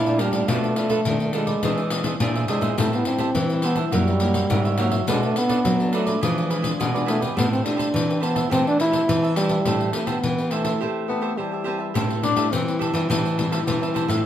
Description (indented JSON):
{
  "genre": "samba and choro",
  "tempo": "105 BPM",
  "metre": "4/4",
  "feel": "straight",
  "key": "A minor",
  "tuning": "A4 = 440 Hz",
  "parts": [
    { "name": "mellow trombone", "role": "melody", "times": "0.0-11.4 s", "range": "F3 to E4", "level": "-23 LUFS", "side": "equal", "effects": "plate reverb" },
    { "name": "cavaquinho", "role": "accompaniment", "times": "0.0-14.2 s", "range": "D4 to A5", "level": "-28 LUFS", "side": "right 6 dB", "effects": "none" },
    { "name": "nylon-string guitar", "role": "accompaniment", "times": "0.0-14.2 s", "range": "F2 to C#5", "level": "-29 LUFS", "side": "left 3 dB", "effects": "none" },
    { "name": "nylon-string guitar", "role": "bass", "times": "0.0-14.2 s", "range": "F#2 to A3", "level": "-25 LUFS", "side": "equal", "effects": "none" },
    { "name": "pandeiro", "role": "percussion", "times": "0.1-14.2 s", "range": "none", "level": "-27 LUFS", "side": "left 4 dB", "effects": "none" },
    { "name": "mellow tenor saxophone", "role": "second line", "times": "11.1-12.8 s", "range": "G3 to D4", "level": "-25 LUFS", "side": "left 6 dB", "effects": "none" }
  ],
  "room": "light reverb",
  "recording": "none",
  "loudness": "-20 LUFS",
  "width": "side -10 dB against mid",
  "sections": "0.0-12.0 A section; 12.0-14.3 B section",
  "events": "break 10.8-12.0; tenor saxophone solo 12.0-14.3",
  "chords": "0.5 Bm7b5; 1.6 Eaug7; 2.8 Am7; 3.9 F#7b9; 5.1 Bm9; 6.2 E7b9; 7.4 Am9; 12.0 Am7",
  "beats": "| 0.48 1.06 1.63 2.21 | 2.78 3.35 3.93 4.50 | 5.07 5.65 6.22 6.79 | 7.37 7.94 8.52 9.09 | 9.66 10.24 10.81 11.38 | 11.96 12.53 13.10 13.68"
}